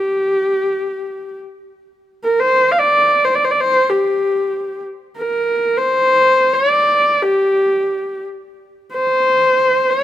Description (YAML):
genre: mongolian traditional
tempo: free time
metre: none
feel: none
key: G yu mode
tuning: A4 = 440 Hz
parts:
  - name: warm horsehead fiddle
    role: solo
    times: 0.0-10.0 s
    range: G4 to F5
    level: -13 LUFS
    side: equal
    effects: none
room: light reverb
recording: rough home demo mix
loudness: -13 LUFS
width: side -12 dB against mid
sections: 0.0-8.6 A section; 8.6-10.0 A section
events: none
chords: none